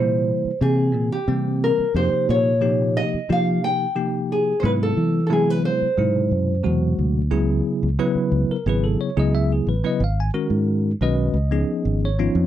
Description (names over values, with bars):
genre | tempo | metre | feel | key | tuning
electric jazz fusion | 89 BPM | 4/4 | straight | C# minor from 7.3 s | A4 = 440 Hz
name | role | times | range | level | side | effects
nylon-string guitar | melody | 0.0-7.0 s | G4 to G5 | -22 LUFS | equal | slapback echo
bell-like tine electric piano | accompaniment | 0.0-12.5 s | B2 to G#5 | -23 LUFS | equal | medium stereo tremolo
fingered electric bass | bass | 0.0-12.5 s | G#1 to F3 | -21 LUFS | equal | none
room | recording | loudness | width
little or no reverb | dry, close 1970s-style studio recording | -18 LUFS | side -11 dB against mid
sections
0.0-7.3 A section; 7.3-12.5 B section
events
none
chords
0.0 C7; 1.9 Fsus2; 4.6 Ab7alt; 7.3 C#m7; 10.0 G#m9; 11.4 C#7